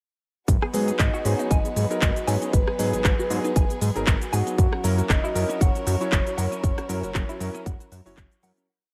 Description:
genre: nu-disco, nu disco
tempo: 117 BPM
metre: 4/4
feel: swing 55% on 16ths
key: G# minor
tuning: A4 = 440 Hz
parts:
  - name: warm studio violin section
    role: sustained chords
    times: 0.5-8.6 s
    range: G#3 to B4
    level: -40 LUFS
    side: equal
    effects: sidechain pumping
  - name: soft round pluck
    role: arpeggios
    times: 0.5-8.6 s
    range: F#3 to F#4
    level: -39 LUFS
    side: equal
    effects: none
  - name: fat analog bass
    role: bass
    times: 0.5-8.5 s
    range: F#1 to G#2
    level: -28 LUFS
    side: equal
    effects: none
  - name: electronic kick drum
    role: drums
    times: 0.5-8.3 s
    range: none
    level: -24 LUFS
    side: equal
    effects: none
  - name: house drum kit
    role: drums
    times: 0.5-8.7 s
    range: handclaps, hi-hat, rim click, shaker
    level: -32 LUFS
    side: equal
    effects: none
  - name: direct-recorded clean electric guitar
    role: riff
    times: 0.6-8.7 s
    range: C#4 to G#5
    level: -36 LUFS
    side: equal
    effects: ensemble chorus
  - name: soft octave-layered synth lead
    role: melody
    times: 0.7-8.2 s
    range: F#4 to D#5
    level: -32 LUFS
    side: equal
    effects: chorus, vintage 12-bit sampler grit, dub echo
  - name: warm electric grand piano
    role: accompaniment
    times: 0.7-8.7 s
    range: F#3 to C#5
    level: -34 LUFS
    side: equal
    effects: sidechain pumping, tape echo
room: little or no reverb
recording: none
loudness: -23 LUFS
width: mono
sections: 0.5-8.7 drop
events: drop 0.5-8.7; fade-out 6.0-8.7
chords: 0.5 G#m7; 4.6 F#7

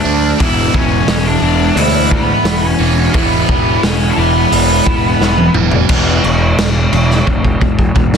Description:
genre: quiet-loud alternative rock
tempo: 87 BPM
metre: 4/4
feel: straight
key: unclear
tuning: A4 = 441 Hz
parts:
  - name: octave-fuzz lead guitar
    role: melody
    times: 0.0-5.5 s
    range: B3 to E5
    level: -16 LUFS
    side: right 1 dB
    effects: distortion
  - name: clean electric guitar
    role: arpeggios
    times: 0.0-5.9 s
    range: D3 to E4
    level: -22 LUFS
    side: right 6 dB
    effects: none
  - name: crunchy overdriven guitar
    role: riff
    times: 0.0-8.2 s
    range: D3 to F#4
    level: -19 LUFS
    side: left 15 dB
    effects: spring reverb
  - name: overdriven semi-hollow guitar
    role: riff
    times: 0.0-8.2 s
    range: E2 to D4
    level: -19 LUFS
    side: right 11 dB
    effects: phaser
  - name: fuzz picked electric bass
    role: bass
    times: 0.0-8.2 s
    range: E1 to D2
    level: -16 LUFS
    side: equal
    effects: overdrive
  - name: raw garage drum kit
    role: drums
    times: 0.4-8.2 s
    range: crash cymbal, hi-hat, kick drum, snare drum, toms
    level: -15 LUFS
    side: equal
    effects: none
room: light reverb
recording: dense, heavily limited modern master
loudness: -10 LUFS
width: side -7 dB against mid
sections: 0.0-5.9 A section; 5.9-8.2 B section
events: drum fill 5.2-5.9, 7.3-8.2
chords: 0.4 E

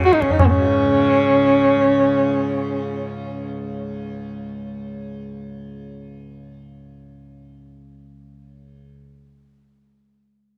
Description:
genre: indian classical, Hindustani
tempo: 169 BPM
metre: 5/4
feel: straight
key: unclear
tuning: A4 = 440 Hz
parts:
  - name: dark sarangi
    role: melody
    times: 0.0-3.0 s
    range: Bb3 to Gb4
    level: -18 LUFS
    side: equal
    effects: tape echo
  - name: tanpura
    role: drone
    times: 0.0-8.9 s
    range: Db2 to Db3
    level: -30 LUFS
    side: equal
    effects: none
  - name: tabla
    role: percussion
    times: 0.0-0.5 s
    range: none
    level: -21 LUFS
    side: equal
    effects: none
room: little or no reverb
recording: dry, close 1970s-style studio recording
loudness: -18 LUFS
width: mono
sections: 0.4-2.2 A section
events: none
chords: none

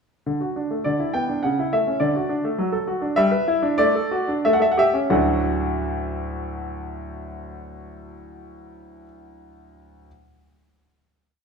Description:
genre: classical-period piano sonatina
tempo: 87-104 BPM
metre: 2/4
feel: straight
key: D major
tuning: A4 = 440 Hz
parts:
  - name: clear grand piano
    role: solo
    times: 0.3-10.1 s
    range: D2 to G5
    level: -20 LUFS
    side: equal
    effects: none
room: moderate recital hall reverb, RT60 1.7 s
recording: minimal, uncompressed stereo recording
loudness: -20 LUFS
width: side -5 dB against mid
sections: 0.3-5.1 A section; 5.1-7.9 final chord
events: slowing down 2.0-5.1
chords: 0.3 D; 0.9 Em7/D; 1.4 A/C#; 2.0 D; 2.6 D/F#; 3.2 Em7/G; 3.8 D/A; 4.4 A7; 5.1 D

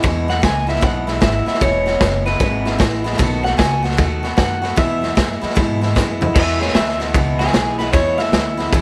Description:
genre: rockabilly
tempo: 152 BPM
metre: 4/4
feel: swing 64% on 8ths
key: E major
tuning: A4 = 440 Hz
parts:
  - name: picked steel-string acoustic guitar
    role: accompaniment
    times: 0.0-8.8 s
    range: E2 to F#4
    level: -25 LUFS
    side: equal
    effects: none
  - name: upright bass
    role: bass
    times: 0.0-8.8 s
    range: E1 to G#2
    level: -24 LUFS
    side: equal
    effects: none
  - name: raw garage drum kit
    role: drums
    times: 0.0-8.8 s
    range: crash cymbal, hi-hat, kick drum, snare drum, toms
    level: -20 LUFS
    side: equal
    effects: none
  - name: electric guitar through a small old amp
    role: melody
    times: 0.3-8.8 s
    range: G#4 to G#5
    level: -24 LUFS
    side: equal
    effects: tape echo
room: small room ambience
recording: none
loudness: -17 LUFS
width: mono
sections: 0.0-6.4 A section; 6.4-8.8 B section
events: drum fill 6.0-6.4; clean electric guitar solo 6.4-8.8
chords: 0.0 E; 3.2 B7; 4.8 E

